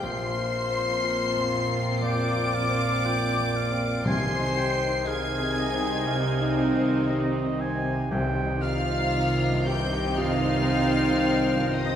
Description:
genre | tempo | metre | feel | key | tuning
cinematic | 59 BPM | 4/4 | rubato | C minor | A4 = 440 Hz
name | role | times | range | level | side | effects
dark studio violin section | melody | 0.0-12.0 s | Eb6 to D7 | -33 LUFS | left 1 dB | none
clear oboe | second line | 0.0-12.0 s | Eb5 to Ab5 | -34 LUFS | right 2 dB | none
mellow clarinet | second line | 0.0-12.0 s | Eb4 to D5 | -32 LUFS | left 2 dB | none
small flute group | second line | 0.0-12.0 s | Eb5 to D6 | -33 LUFS | left 3 dB | none
warm chamber violin section | second line | 0.0-12.0 s | Eb5 to D6 | -35 LUFS | left 1 dB | none
dark chamber viola section | accompaniment | 0.0-12.0 s | C4 to F4 | -30 LUFS | right 2 dB | none
warm concert grand piano | accompaniment | 0.0-12.0 s | Bb1 to C5 | -33 LUFS | left 1 dB | none
mellow French horn section | sustained chords | 0.0-12.0 s | Eb3 to C5 | -32 LUFS | left 6 dB | none
rich symphonic cello section | bass | 0.0-12.0 s | Bb2 to C3 | -31 LUFS | right 2 dB | none
rich symphonic double bass section | bass | 0.0-12.0 s | Bb1 to C2 | -32 LUFS | right 2 dB | none
timpani | percussion | 4.1-9.6 s | C3 | -33 LUFS | equal | none
room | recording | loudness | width
wet recital hall reverb, RT60 1.6 s | recorded in a church or concert hall | -22 LUFS | side -9 dB against mid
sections
0.0-12.0 A section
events
none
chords
0.0 Bbsus2; 4.1 Ab/C; 8.1 Cm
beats
| 0.03 1.04 2.04 3.05 | 4.07 5.08 6.08 7.10 | 8.12 9.15 10.18 11.22

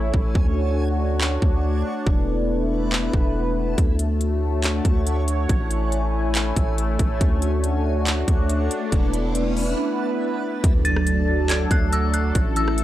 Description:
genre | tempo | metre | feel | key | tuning
hip hop, atmospheric cloud-rap | 140 BPM | 4/4 | half-time | D lydian | A4 = 440 Hz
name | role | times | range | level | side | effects
sweeping resonant pad | sustained chords | 0.0-12.8 s | E3 to G#5 | -24 LUFS | equal | chorus, sidechain pumping
long sustained 808-style bass | bass | 0.0-12.8 s | E1 to D2 | -23 LUFS | equal | none
backwards swelling texture | texture | 0.0-12.8 s | C#4 to C#6 | -38 LUFS | equal | built-in reverb
trap drum kit | drums | 0.1-12.8 s | handclaps, hi-hat, kick drum, rim click | -21 LUFS | equal | none
riser and impact | sound effects | 8.7-12.4 s | none | -34 LUFS | equal | none
dark detuned synth bell | melody | 10.8-12.8 s | E6 to A6 | -26 LUFS | left 1 dB | chorus, low-pass filter, tape echo
room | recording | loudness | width
little or no reverb | dry, gritty hardware recording | -19 LUFS | side -14 dB against mid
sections
0.0-10.6 A section; 10.6-12.8 B section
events
break 0.0-3.8, 9.8-10.6; riser 8.7-10.6; impact 10.6-12.4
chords
0.4 Dmaj7; 2.1 E7sus4; 3.8 Dmaj7; 5.5 Amaj7; 7.2 Dmaj7; 8.9 E7sus4; 10.6 Dmaj7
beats
| 0.35 0.78 1.21 1.64 | 2.07 2.49 2.92 3.35 | 3.78 4.21 4.64 5.07 | 5.49 5.92 6.35 6.78 | 7.21 7.64 8.07 8.49 | 8.92 9.35 9.78 10.21 | 10.64 11.07 11.49 11.92 | 12.35 12.78

